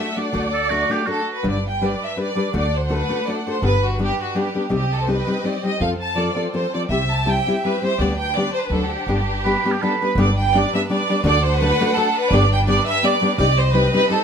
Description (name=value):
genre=mexican folk, mariachi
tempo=166 BPM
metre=3/4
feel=swing 54% on 8ths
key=G major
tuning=A4 = 440 Hz
part: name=rich studio violin section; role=melody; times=0.0-14.2 s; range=F#4 to A5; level=-21 LUFS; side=right 1 dB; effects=none
part: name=nylon-string guitar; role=accompaniment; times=0.0-14.2 s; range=G2 to B4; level=-22 LUFS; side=left 2 dB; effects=none
part: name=rich chamber violin section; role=sustained chords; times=0.0-14.2 s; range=G3 to F#5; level=-30 LUFS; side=right 2 dB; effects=none
part: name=upright bass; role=bass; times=0.3-13.8 s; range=G1 to F2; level=-22 LUFS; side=equal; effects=none
part: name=clear oboe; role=second line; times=0.5-1.4, 9.4-10.2 s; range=F#4 to B4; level=-22 LUFS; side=right 5 dB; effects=none
room=moderate studio reverb, RT60 0.5 s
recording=none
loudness=-17 LUFS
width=side -7 dB against mid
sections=0.0-1.4 A section; 1.4-10.2 B section; 10.2-14.2 B section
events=none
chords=0.0 D; 1.4 G; 2.5 D; 3.6 G; 4.7 Cm; 5.8 F; 6.9 C; 8.0 G/D; 8.7 D7; 9.1 G; 11.2 D; 12.3 G; 13.4 Cm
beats=| 0.35 0.72 1.08 | 1.45 1.82 2.18 | 2.54 2.90 3.26 | 3.63 3.99 4.35 | 4.71 5.08 5.44 | 5.81 6.18 6.54 | 6.90 7.27 7.63 | 7.99 8.35 8.71 | 9.07 9.44 9.80 | 10.16 10.53 10.89 | 11.24 11.60 11.96 | 12.31 12.67 13.03 | 13.38 13.74 14.10